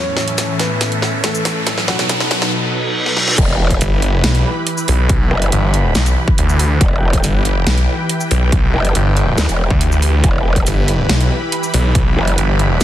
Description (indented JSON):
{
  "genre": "heavy wobble dubstep",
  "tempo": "140 BPM",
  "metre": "4/4",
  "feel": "half-time",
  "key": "E minor from 3.4 s",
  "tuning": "A4 = 440 Hz",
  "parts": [
    { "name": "warm grand piano", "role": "melody", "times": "0.0-2.5 s", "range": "F#3 to C#5", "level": "-24 LUFS", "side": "left 1 dB", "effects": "ping-pong delay" },
    { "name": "supersaw pad", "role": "sustained chords", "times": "0.0-12.8 s", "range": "A2 to B5", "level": "-21 LUFS", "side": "equal", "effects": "phaser, vintage 12-bit sampler grit, sidechain pumping" },
    { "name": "riser and reverse cymbal", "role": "sound effects", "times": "0.0-3.4 s", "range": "none", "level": "-21 LUFS", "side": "equal", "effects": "none" },
    { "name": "dubstep drum kit", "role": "drums", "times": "0.2-12.8 s", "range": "crash cymbal, hi-hat, shaker, snare drum", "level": "-20 LUFS", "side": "equal", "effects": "high-pass filter on hats, high-pass filter on snare, high-pass filter on perc, high-pass filter on cymbals" },
    { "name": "growl bass", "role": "bass", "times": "3.4-12.4 s", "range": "E1 to D2", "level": "-16 LUFS", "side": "equal", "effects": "chorus, overdrive" },
    { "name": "electronic kick drum", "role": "drums", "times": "3.4-12.0 s", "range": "none", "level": "-16 LUFS", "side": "equal", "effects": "overdrive" },
    { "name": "snarling distorted saw bass", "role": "bass", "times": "3.8-12.8 s", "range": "G1 to D2", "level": "-14 LUFS", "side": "equal", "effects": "distortion, overdrive" }
  ],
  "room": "little or no reverb",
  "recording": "dense, heavily limited modern master",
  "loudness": "-13 LUFS",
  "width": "side -12 dB against mid",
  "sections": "0.0-3.4 A section; 3.4-12.8 B section",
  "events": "build-up 0.0-3.4; drum fill 0.0-2.5, 3.1-3.4; riser 0.0-2.5; filter sweep on supersaw synth 0.0-3.4; reverse cymbal 2.5-3.4; drop 3.4-12.8",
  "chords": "0.0 A; 1.7 B7; 3.4 Em",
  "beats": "0.38 0.81 1.24 | 1.67 2.10 2.52 2.95 | 3.38 3.81 4.24 4.67 | 5.09 5.52 5.95 6.38 | 6.81 7.24 7.67 8.10 | 8.52 8.95 9.38 9.81 | 10.24 10.67 11.10 11.52 | 11.95 12.38 12.81"
}